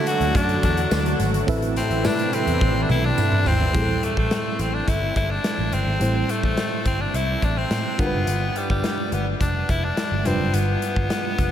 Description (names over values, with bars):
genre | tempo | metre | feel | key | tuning
1980s-style pop | 106 BPM | 4/4 | straight | A minor | A4 = 440 Hz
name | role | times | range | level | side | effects
raspy tenor saxophone | melody | 0.0-11.5 s | G3 to F#4 | -25 LUFS | left 2 dB | tape echo
FM electric piano with auto-pan | accompaniment | 0.0-11.5 s | G2 to E5 | -27 LUFS | right 1 dB | none
warm analog pad | sustained chords | 0.0-3.7 s | C3 to B4 | -29 LUFS | equal | chorus
big rock drum kit | drums | 0.1-11.5 s | hi-hat, kick drum, snare drum, tambourine, toms | -25 LUFS | equal | none
tambourine | percussion | 0.1-3.6 s | none | -45 LUFS | right 6 dB | none
vintage muted picked electric bass | bass | 0.2-11.5 s | F1 to A2 | -25 LUFS | equal | none
room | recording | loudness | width
wet huge ambient reverb, RT60 7.8 s | dreamy mix soaked in reverb | -19 LUFS | side -10 dB against mid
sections
0.0-3.7 A section; 3.7-11.5 B section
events
drum fill 2.6-3.7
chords
0.0 D; 1.5 Amadd9; 3.7 Am7; 8.0 G7